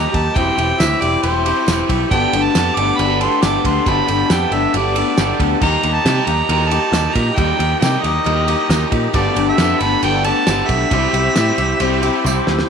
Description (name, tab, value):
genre	folk rock and heartland rock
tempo	136 BPM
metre	4/4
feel	straight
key	unclear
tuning	A4 = 440 Hz
part	mellow harmonica	melody	0.0-12.2 s	C5 to D6	-20 LUFS	right 1 dB	none
part	picked steel-string acoustic guitar	accompaniment	0.0-12.7 s	G2 to G4	-22 LUFS	left 13 dB	none
part	tonewheel organ	sustained chords	0.0-12.7 s	Bb3 to Bb4	-28 LUFS	right 1 dB	none
part	electric guitar through a small old amp	riff	0.0-12.7 s	C3 to A4	-21 LUFS	right 2 dB	none
part	picked electric bass	bass	0.0-12.6 s	E1 to C3	-20 LUFS	right 1 dB	none
part	damped 70s drum kit	drums	0.1-12.7 s	crash cymbal, kick drum, ride cymbal, snare drum, toms	-21 LUFS	right 2 dB	none
part	tambourine	percussion	0.8-12.4 s	none	-30 LUFS	right 13 dB	none
room	moderate echo chamber reverb, RT60 1.9 s, studio reverb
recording	1960s-style stereo with parts hard left and right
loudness	-14 LUFS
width	side -6 dB against mid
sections	0.0-12.7 A section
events	drum fill 12.3-12.7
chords	0.4 C/E; 2.1 Gadd9; 5.6 Eb; 9.1 Gadd9; 10.9 C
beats	| 0.35 0.79 1.23 1.67 | 2.11 2.54 2.98 3.42 | 3.86 4.30 4.74 5.18 | 5.62 6.06 6.50 6.94 | 7.38 7.82 8.26 8.70 | 9.14 9.59 10.03 10.47 | 10.92 11.36 11.81 12.25